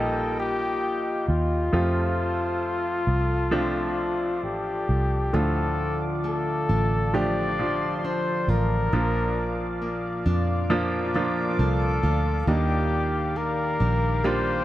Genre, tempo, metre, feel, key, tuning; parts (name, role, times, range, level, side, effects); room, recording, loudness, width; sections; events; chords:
pop ballad; 67 BPM; 4/4; straight; A4 = 440 Hz
warm flugelhorn; melody; 0.0-14.6 s; F4 to D5; -28 LUFS; left 2 dB; dub echo
clear concert grand piano; accompaniment; 0.0-14.6 s; A2 to G4; -29 LUFS; right 1 dB; dub echo
chorused pulse-width pad; sustained chords; 0.0-14.6 s; Bb3 to D6; -32 LUFS; left 1 dB
vintage muted fingered electric bass; bass; 0.0-14.6 s; A1 to F2; -26 LUFS; equal
nylon-string guitar; arpeggios; 5.3-14.6 s; Bb2 to F4; -31 LUFS; equal; dub echo
light reverb, small room ambience; echo-heavy mix; -22 LUFS; side -14 dB against mid
0.0-5.3 A section; 5.3-14.6 B section
0.0 Ebadd9; 1.7 F; 5.3 Dm; 8.9 Bb; 12.5 Ebmaj7